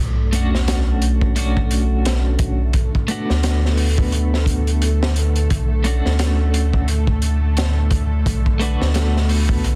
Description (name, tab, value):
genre	trip hop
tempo	87 BPM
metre	4/4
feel	swing 59% on 16ths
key	B minor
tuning	A4 = 440 Hz
part	string machine, cellos	sustained chords	0.0-9.8 s	A3 to A4	-31 LUFS	equal	ensemble chorus
part	soft dub sub bass	bass	0.0-9.8 s	B1 to D2	-20 LUFS	equal	none
part	sub drop	sound effects	0.0-2.7 s	none	-31 LUFS	equal	none
part	bowed-like drone	texture	2.9-9.8 s	D3	-37 LUFS	equal	none
part	twelve-string electric guitar	accompaniment	0.3-9.8 s	A3 to F#4	-27 LUFS	equal	tremolo, vintage 12-bit sampler grit, tape echo
part	crunchy breakbeat drum kit	drums	0.3-9.8 s	hi-hat, kick drum, snare drum	-24 LUFS	equal	none
room	small room ambience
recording	dense, heavily limited modern master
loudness	-18 LUFS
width	mono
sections	0.0-9.8 A section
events	impact 0.0-2.7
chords	0.0 Bm7